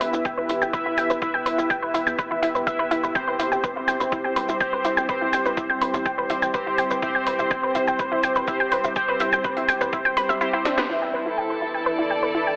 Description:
melodic techno; 124 BPM; 4/4; straight; A4 = 440 Hz
evolving wavetable pad; sustained chords; 0.0-12.6 s; E3 to G4; -37 LUFS; equal; chorus, built-in reverb, sidechain pumping
analog pluck; arpeggios; 0.0-12.5 s; B3 to G5; -26 LUFS; equal; chorus, sidechain pumping, dub echo
analog synth brass; stabs; 0.0-12.6 s; C4 to E5; -28 LUFS; equal; chorus, sidechain pumping, dub echo
tight sequencer bass; bass; 0.0-12.6 s; D1 to E2; -37 LUFS; equal; sidechain pumping
techno drum kit; drums; 0.0-10.9 s; hi-hat, shaker, snare drum; -37 LUFS; equal; low-pass filter on perc, low-pass filter on hats, low-pass filter on snare, low-pass filter on room
electronic kick drum; drums; 0.2-10.0 s; -33 LUFS; equal
bowed-like drone; drone; 11.4-12.6 s; E2 to E3; -47 LUFS; equal; built-in reverb, sidechain pumping
dark studio string section; texture; 10.9-12.6 s; E4 to D5; -29 LUFS; equal; sidechain pumping
moderate lush hall reverb, RT60 1.8 s, digital ambience; heavily compressed radio sound, telephone sound; -23 LUFS; mono
0.0-10.9 A section; 10.9-12.6 B section
filter sweep on synth arpeggio sound 0.0-10.9; drum fill 10.7; band accent 10.8; filter sweep on analog polysynth 10.9-12.6; filter sweep on ambient pad 10.9-12.6
0.0 Em; 3.2 C/E; 10.9 Em7

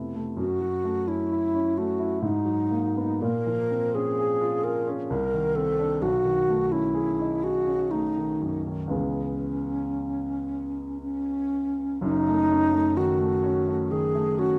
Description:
classical, impressionist duo for alto flute and grand piano; 56-68 BPM; 3/4; rubato; F# dorian; A4 = 440 Hz
dark baby grand piano; accompaniment; 0.0-14.6 s; F#1 to G#4; -31 LUFS; equal
mellow hollow alto flute; melody; 0.4-14.6 s; C#4 to Bb4; -27 LUFS; equal
moderate recital hall reverb, RT60 1.7 s; close, detailed microphones; -26 LUFS; mono
0.0-12.0 A section; 12.0-14.6 B section
0.4 F#m7; 2.2 G#m9; 3.2 A#m9; 5.1 Cm9; 6.0 B13; 8.9 C#m7; 12.0 F#m6

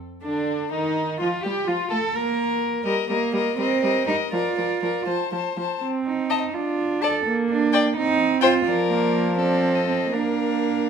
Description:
quick classical-period movement for string quartet; 78-86 BPM (dotted quarters); 6/8; rubato; Bb major; A4 = 443 Hz
rich violin; melody; 0.2-10.9 s; D4 to A5; -28 LUFS; left 12 dB
rich violin; second line; 0.2-10.8 s; D4 to Eb5; -27 LUFS; left 5 dB
dark viola; accompaniment; 0.2-10.9 s; D3 to D4; -26 LUFS; right 3 dB
rich cello; bass; 0.2-10.9 s; Bb3 to Bb4; -24 LUFS; right 5 dB
moderate recital hall reverb, RT60 1.6 s; -20 LUFS; side -7 dB against mid
0.0-10.9 A section
0.0 N.C.; 0.7 Ebsus2; 1.4 Bb5; 2.8 Eb/G; 3.6 Cm7/G; 4.3 Bb/F; 5.8 Adim/C (rootless); 6.5 Dm; 7.3 Gm/Bb (rootless); 8.0 Cm; 8.7 Bb/F; 9.4 F6; 10.1 Bb

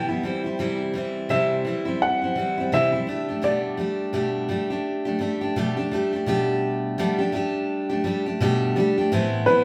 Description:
pop; 84 BPM; 4/4; swing 60% on 16ths; G major; A4 = 440 Hz
dark upright piano; melody; 0.0-9.6 s; B4 to G5; -25 LUFS; equal
picked steel-string acoustic guitar; accompaniment; 0.0-9.6 s; A2 to G4; -25 LUFS; equal
wet large studio reverb, RT60 1.0 s; band playing live in one room; -24 LUFS; mono
0.0-6.3 A section; 6.3-9.1 B section
0.2 C; 3.1 Gadd9/B; 9.1 Amadd9

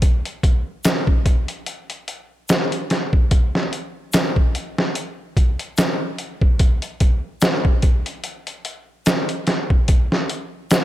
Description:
trip hop; 73 BPM; 4/4; swing 56% on 16ths
trip hop sampler-style drum kit; drums; 0.0-10.8 s; hi-hat, kick drum, snare drum; -17 LUFS; equal
tube shaker; percussion; 0.8-10.8 s; -33 LUFS; left 2 dB
little or no reverb; -17 LUFS; side -14 dB against mid
0.0-10.8 A section

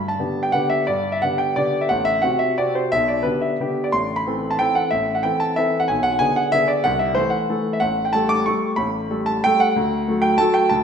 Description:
classical, piano waltz; 165-199 BPM; 3/4; rubato; A4 = 436 Hz
warm grand piano; solo; 0.0-10.8 s; A1 to D6; -18 LUFS; equal
wet recital hall reverb, RT60 1.5 s; -18 LUFS; side -7 dB against mid
0.0-10.8 A section
0.0 G; 1.9 F#dim/A; 2.9 G/B; 3.9 Am; 5.9 G#dim/B; 6.9 Am/C; 7.8 A7; 9.7 D

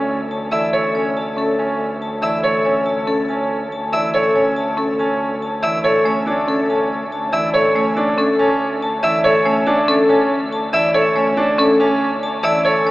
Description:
classical, minimalist pattern music; 141 BPM; 4/4; straight; A4 = 440 Hz
bright concert grand piano; arpeggios; 0.0-12.9 s; C#4 to C#5; -18 LUFS; right 1 dB
warm double bass; bass; 0.0-12.9 s; D2; -29 LUFS; equal
vibraphone with hard mallets; melody; 0.3-12.9 s; A4 to A5; -19 LUFS; left 2 dB
marimba with medium mallets; accompaniment; 0.5-12.9 s; E3 to C#4; -25 LUFS; equal
clear violin; arpeggios; 0.5-12.6 s; E6; -27 LUFS; equal
wet huge ambient reverb, RT60 7.8 s; in a vast, echoing space, AM radio sound; -15 LUFS; side -18 dB against mid
0.0-12.9 A section
0.0 D5

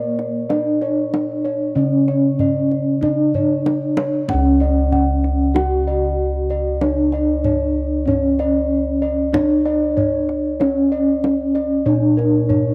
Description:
Javanese gamelan; 48 BPM; 4/4; straight; A4 = 439 Hz
gamelan-type bronze metallophone; melody; 0.0-12.7 s; A#3+20c to F#4+30c; -21 LUFS; equal
gamelan-type bossed gongs; arpeggios; 0.0-12.7 s; A#4+20c to F#5+30c; -25 LUFS; equal
gamelan-type bossed gongs; bass; 0.0-12.7 s; C#2 to A#4+20c; -24 LUFS; equal
kendang; percussion; 0.2-12.7 s; -26 LUFS; equal
moderate plate reverb, RT60 3.5 s; -18 LUFS; mono
0.0-4.3 A section; 4.3-12.7 A section
drum fill 3.3-4.3

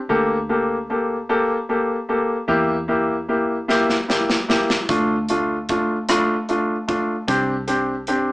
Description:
six-eight pop ballad; 50 BPM (dotted quarters); 6/8; straight; D minor; A4 = 441 Hz
vintage muted fingered electric bass; bass; 0.0-8.3 s; C2 to E2; -30 LUFS; equal
clear concert grand piano; accompaniment; 0.1-8.3 s; A3 to A4; -19 LUFS; equal
modern studio drum kit; drums; 3.7-8.3 s; hi-hat, kick drum, rim click, snare drum; -23 LUFS; equal
moderate studio ambience, RT60 0.5 s; band playing live in one room, small speaker sound; -18 LUFS; side -20 dB against mid
0.0-8.3 A section
drum fill 3.7-4.9
0.1 Gmadd9/D; 2.5 Edim; 4.9 Dm; 7.3 Csus2

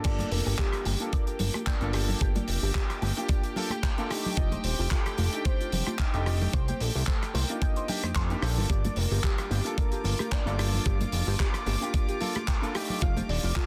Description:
nu-disco, nu disco; 111 BPM; 4/4; swing 55% on 16ths; G minor; A4 = 442 Hz
soft octave-layered synth lead; melody; 0.0-13.7 s; G4 to F5; -41 LUFS; equal; chorus, phaser, delay
clear baby grand piano; accompaniment; 0.0-13.7 s; A3 to A4; -38 LUFS; equal; vintage 12-bit sampler grit, sidechain pumping, dub echo
rich chamber string section; sustained chords; 0.0-13.7 s; F4 to D6; -42 LUFS; equal; sidechain pumping
electric guitar with an envelope filter; riff; 0.0-13.6 s; F4 to C6; -43 LUFS; equal; analog chorus, dub echo
fat analog bass; bass; 0.0-13.5 s; Eb1 to F2; -31 LUFS; equal; sidechain pumping
damped 70s drum kit; drums; 0.0-13.7 s; crash cymbal, handclaps, hi-hat, rim click; -36 LUFS; equal
electronic kick drum; drums; 0.0-13.7 s; -30 LUFS; equal
congas; percussion; 0.2-13.3 s; -39 LUFS; equal
light reverb, small room ambience; dense, heavily limited modern master; -28 LUFS; mono
0.0-13.7 A section
drop 0.0-13.7
0.0 Gm7; 4.4 F13; 6.5 Cm7; 8.7 Gm7; 13.0 F13

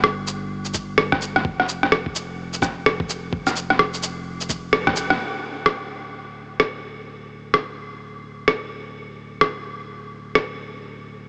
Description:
future garage; 128 BPM; 4/4; swing 61% on 16ths; D minor; A4 = 441 Hz
soft dub sub bass; bass; 0.0-11.3 s; D1 to G1; -37 LUFS; equal; tube saturation, sidechain pumping
electronic rim click and shaker; drums; 0.0-10.5 s; -23 LUFS; equal; studio reverb
electronic kick drum; drums; 0.7-4.9 s; -30 LUFS; equal; studio reverb
moderate huge ambient reverb, RT60 5.0 s; cassette tape, small speaker sound; -23 LUFS; mono
0.0-5.2 A section; 5.2-11.3 B section
band accent 4.7

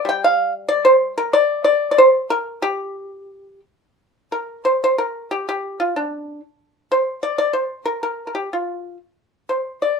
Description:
chinese traditional, Chinese solo plucked strings; 87-98 BPM; 2/4; rubato; G yu mode; A4 = 440 Hz
pipa; solo; 0.0-10.0 s; G3 to G5; -17 LUFS; equal
wet studio reverb, RT60 0.5 s; rough home demo mix, lossy compression artefacts; -17 LUFS; side -5 dB against mid
0.0-4.0 A section; 4.0-10.0 B section

